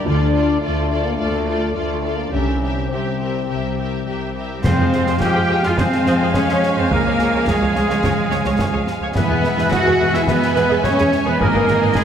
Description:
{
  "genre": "cinematic, heroic adventure film score",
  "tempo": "106 BPM",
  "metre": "4/4",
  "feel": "straight",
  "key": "F minor from 4.6 s",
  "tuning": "A4 = 439 Hz",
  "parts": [
    { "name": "rich symphonic violin section", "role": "melody", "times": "0.0-12.0 s", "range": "Ab4 to G5", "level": "-29 LUFS", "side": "left 2 dB", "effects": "none" },
    { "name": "rich symphonic violin section", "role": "second line", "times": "0.0-12.0 s", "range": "A4 to Ab5", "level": "-29 LUFS", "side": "left 2 dB", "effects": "none" },
    { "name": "clear symphonic viola section", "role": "accompaniment", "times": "0.0-12.0 s", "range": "F4 to Db5", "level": "-27 LUFS", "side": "right 2 dB", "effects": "none" },
    { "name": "concert harp", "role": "arpeggios", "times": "0.0-12.0 s", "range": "Ab2 to C6", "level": "-26 LUFS", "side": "left 7 dB", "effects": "none" },
    { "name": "warm French horn section", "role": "sustained chords", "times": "0.1-12.0 s", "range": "Ab3 to Gb4", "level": "-24 LUFS", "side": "left 4 dB", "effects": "none" },
    { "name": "rich symphonic double bass section", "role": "bass", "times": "0.1-12.0 s", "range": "Ab1 to F2", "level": "-24 LUFS", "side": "right 3 dB", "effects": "none" },
    { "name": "warm symphonic cello section", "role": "bass", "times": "0.1-12.0 s", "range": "C2 to G4", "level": "-22 LUFS", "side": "right 2 dB", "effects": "none" },
    { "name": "bright flute section", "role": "second line", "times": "4.6-12.0 s", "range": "Ab5 to G#5", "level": "-29 LUFS", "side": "equal", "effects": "none" },
    { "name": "clear clarinet", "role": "second line", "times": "4.6-12.0 s", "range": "Eb5 to F5", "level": "-29 LUFS", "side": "right 1 dB", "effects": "none" },
    { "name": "clear oboe", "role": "second line", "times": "4.6-12.0 s", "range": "Ab4 to G5", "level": "-26 LUFS", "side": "right 1 dB", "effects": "none" },
    { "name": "dark trombone section", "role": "sustained chords", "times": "4.6-12.0 s", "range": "Eb3 to Ab3", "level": "-27 LUFS", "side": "right 3 dB", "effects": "none" },
    { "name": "clear trumpet section", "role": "stabs", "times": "4.6-12.0 s", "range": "Ab4 to Gb5", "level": "-25 LUFS", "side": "right 2 dB", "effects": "none" },
    { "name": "concert snare drum, clash cymbals and concert bass drum", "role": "drums", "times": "4.6-12.0 s", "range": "none", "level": "-24 LUFS", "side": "equal", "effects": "none" },
    { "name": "timpani", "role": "percussion", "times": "4.6-5.5 s", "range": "F2", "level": "-24 LUFS", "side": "equal", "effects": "none" }
  ],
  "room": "wet scoring stage reverb, RT60 1.7 s",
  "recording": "none",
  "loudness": "-16 LUFS",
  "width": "side -8 dB against mid",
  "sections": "0.0-4.6 A section; 4.6-12.0 B section",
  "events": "none",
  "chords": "0.1 Dm; 2.3 C7; 4.6 Fm; 6.9 Db; 9.2 E; 11.4 Abm",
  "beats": "| 0.06 0.62 1.19 1.76 | 2.33 2.91 3.49 4.07 | 4.64 5.21 5.78 6.34 | 6.91 7.48 8.04 8.60 | 9.16 9.72 10.29 10.85 | 11.41 11.97"
}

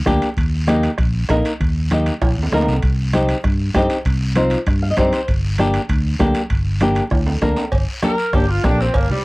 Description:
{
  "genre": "latin, cumbia",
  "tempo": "196 BPM",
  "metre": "4/4",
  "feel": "straight",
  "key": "G minor",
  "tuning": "A4 = 440 Hz",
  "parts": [
    { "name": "flamenco guitar", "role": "accompaniment", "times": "0.1-8.9 s", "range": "Bb3 to F5", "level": "-18 LUFS", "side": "left 1 dB", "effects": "none" },
    { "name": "fingered electric bass", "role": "bass", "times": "0.1-9.1 s", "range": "G1 to G2", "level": "-20 LUFS", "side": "equal", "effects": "none" },
    { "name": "bombo", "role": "percussion", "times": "0.1-9.1 s", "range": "none", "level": "-21 LUFS", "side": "equal", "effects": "none" },
    { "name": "congas", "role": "percussion", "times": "0.1-9.2 s", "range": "none", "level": "-26 LUFS", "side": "equal", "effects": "none" },
    { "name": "guiro", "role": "percussion", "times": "0.1-9.2 s", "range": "none", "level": "-33 LUFS", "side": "left 2 dB", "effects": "none" },
    { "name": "timbales and cowbell", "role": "percussion", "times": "0.1-9.1 s", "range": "none", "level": "-28 LUFS", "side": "right 2 dB", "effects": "none" },
    { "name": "clear saxophone section", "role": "melody", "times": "8.0-9.2 s", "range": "G3 to Bb4", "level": "-21 LUFS", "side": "equal", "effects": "tape echo" }
  ],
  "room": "light reverb",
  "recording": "dry, gritty hardware recording, vinyl crackle",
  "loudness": "-15 LUFS",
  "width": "side -22 dB against mid",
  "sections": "0.0-7.7 A section; 7.7-9.2 B section",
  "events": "drum fill 2.2-2.8, 7.1-7.7; nylon-string guitar fill 4.7-5.3; saxophone section solo 7.7-9.2",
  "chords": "0.4 Eb; 2.8 Cm; 5.3 Gm",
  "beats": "0.07 | 0.38 0.69 0.99 1.30 | 1.60 1.91 2.22 2.52 | 2.83 3.14 3.44 3.75 | 4.05 4.36 4.67 4.97 | 5.28 5.59 5.89 6.20 | 6.50 6.81 7.12 7.42 | 7.73 8.03 8.34 8.64 | 8.95"
}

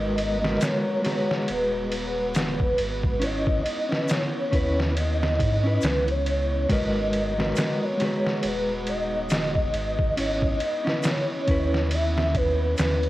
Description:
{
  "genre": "trip hop",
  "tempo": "69 BPM",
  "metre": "4/4",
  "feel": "swing 57% on 16ths",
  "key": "G# minor",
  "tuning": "A4 = 439 Hz",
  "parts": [
    { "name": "pure breathy sine lead", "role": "melody", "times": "0.0-13.1 s", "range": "B4 to E5", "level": "-27 LUFS", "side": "equal", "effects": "ensemble chorus, cassette tape, tape echo" },
    { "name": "mellow electric guitar", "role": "accompaniment", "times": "0.0-11.9 s", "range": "G#3 to C#5", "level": "-29 LUFS", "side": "equal", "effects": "tremolo, vintage 12-bit sampler grit, cassette tape" },
    { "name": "warbly tape-like pad", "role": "sustained chords", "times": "0.2-13.1 s", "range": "G#3 to A#5", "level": "-35 LUFS", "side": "equal", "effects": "chorus, built-in reverb, vintage 12-bit sampler grit, cassette tape" },
    { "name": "warm sub bass", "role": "bass", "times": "0.0-13.1 s", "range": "D#1 to G#2", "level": "-28 LUFS", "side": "equal", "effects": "none" },
    { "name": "trip hop sampler-style drum kit", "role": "drums", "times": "0.2-13.1 s", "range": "kick drum, ride cymbal, snare drum", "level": "-27 LUFS", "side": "equal", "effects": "cassette tape" },
    { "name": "tube shaker", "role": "percussion", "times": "0.6-13.0 s", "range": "none", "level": "-41 LUFS", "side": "left 7 dB", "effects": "none" }
  ],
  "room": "little or no reverb",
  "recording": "home recording on cassette, vinyl crackle",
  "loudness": "-22 LUFS",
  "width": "side -16 dB against mid",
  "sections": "0.0-13.1 A section",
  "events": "none",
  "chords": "0.0 G#m9; 3.2 C#m9/G#; 6.7 G#m9; 10.2 C#m9/G#",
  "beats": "0.61 1.48 2.35 | 3.22 4.09 4.96 5.83 | 6.70 7.57 8.43 9.30 | 10.17 11.04 11.91 12.78"
}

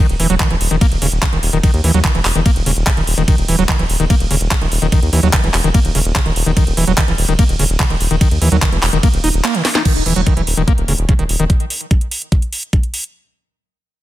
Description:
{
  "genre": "psychedelic trance",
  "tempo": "146 BPM",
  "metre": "4/4",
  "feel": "straight",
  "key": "Eb phrygian",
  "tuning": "A4 = 440 Hz",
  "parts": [
    { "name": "overdriven acid bass", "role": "riff", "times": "0.0-11.4 s", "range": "Db3 to Eb4", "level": "-19 LUFS", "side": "moving between left 4 dB and right 3 dB", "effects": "distortion, auto-pan, sidechain pumping, tape echo" },
    { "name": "round analog bass", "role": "bass", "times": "0.1-11.5 s", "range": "Eb1 to Eb2", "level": "-16 LUFS", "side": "equal", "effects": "none" },
    { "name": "garage drum kit", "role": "drums", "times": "0.1-13.1 s", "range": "crash cymbal, handclaps, hi-hat, ride cymbal, snare drum", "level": "-19 LUFS", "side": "right 1 dB", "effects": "none" },
    { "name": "electronic kick drum", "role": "drums", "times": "0.4-12.8 s", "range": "none", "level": "-14 LUFS", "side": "equal", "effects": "none" }
  ],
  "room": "little or no reverb",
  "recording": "dense, heavily limited modern master",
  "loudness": "-12 LUFS",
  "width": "side -15 dB against mid",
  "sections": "0.0-9.9 A section; 9.9-13.1 B section",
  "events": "drop 0.0-9.9; drum fill 9.6",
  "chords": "0.0 Eb5",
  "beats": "0.40 0.81 1.22 | 1.64 2.05 2.46 2.87 | 3.28 3.69 4.10 4.51 | 4.92 5.33 5.75 6.16 | 6.57 6.98 7.39 7.80 | 8.21 8.62 9.03 9.44 | 9.85 10.27 10.68 11.09 | 11.50 11.91 12.32 12.73"
}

